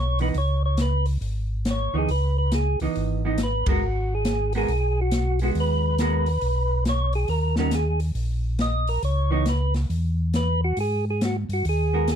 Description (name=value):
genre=soul jazz organ trio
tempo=138 BPM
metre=4/4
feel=swing 65% on 8ths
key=G# minor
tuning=A4 = 440 Hz
part: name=percussive tonewheel organ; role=melody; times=0.0-12.2 s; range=F#4 to D#5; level=-26 LUFS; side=right 1 dB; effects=slow rotary speaker
part: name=mellow tonewheel organ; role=bass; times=0.0-12.2 s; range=F#1 to G#2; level=-23 LUFS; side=equal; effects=chorus vibrato, slow rotary speaker
part: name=vintage hollow-body jazz guitar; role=accompaniment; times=0.2-12.1 s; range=D#3 to A#4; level=-27 LUFS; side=right 5 dB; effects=none
part: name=open jazz drum kit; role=drums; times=0.2-12.2 s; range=hi-hat, kick drum, ride cymbal, snare drum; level=-29 LUFS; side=left 1 dB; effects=none
room=little or no reverb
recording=dark, warm production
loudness=-21 LUFS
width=side -9 dB against mid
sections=0.0-12.2 A section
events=band accent 3.6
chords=0.4 C#m9; 3.8 G#m7; 7.3 D#5; 9.0 C#m7; 10.8 G#7(no3)